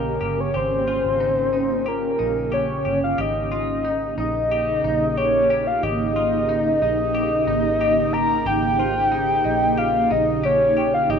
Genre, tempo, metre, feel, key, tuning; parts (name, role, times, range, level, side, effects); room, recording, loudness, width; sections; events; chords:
dream pop; 91 BPM; 4/4; straight; A4 = 440 Hz
soft octave-layered synth lead; melody; 0.0-11.2 s; Bb4 to Bb5; -20 LUFS; left 1 dB; chorus, ping-pong delay
ethereal airy pad; sustained chords; 0.0-11.2 s; Db3 to G4; -24 LUFS; right 2 dB; ensemble chorus, built-in reverb
semi-hollow electric guitar; arpeggios; 0.0-11.2 s; Eb4 to G4; -32 LUFS; left 6 dB; lush chorus, ping-pong delay
vintage muted fingered electric bass; bass; 0.0-11.2 s; G1 to Bb1; -31 LUFS; right 1 dB
celesta; texture; 0.0-11.2 s; Db4 to G5; -33 LUFS; right 1 dB; ping-pong delay
light reverb; rough home demo mix; -18 LUFS; side -6 dB against mid
0.0-3.2 A section; 3.2-11.2 B section
0.0 Eb7; 3.2 Eb7/Ab